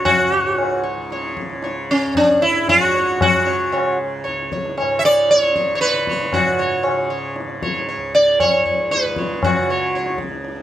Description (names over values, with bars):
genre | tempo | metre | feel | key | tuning
indian classical, Hindustani | 116 BPM | 3/4 | straight | C# raga bhairavi | A4 = 437 Hz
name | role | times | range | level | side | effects
sitar | melody | 0.0-10.2 s | C#4 to E5 | -16 LUFS | equal | none
tanpura | drone | 0.0-10.6 s | C#2 to C#3 | -28 LUFS | right 2 dB | none
tabla | percussion | 0.1-10.6 s | none | -23 LUFS | left 2 dB | none
room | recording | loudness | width
light reverb | close, detailed microphones | -16 LUFS | side -12 dB against mid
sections
0.0-6.3 A section; 6.3-10.6 B section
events
speeding up 0.0-10.6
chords
none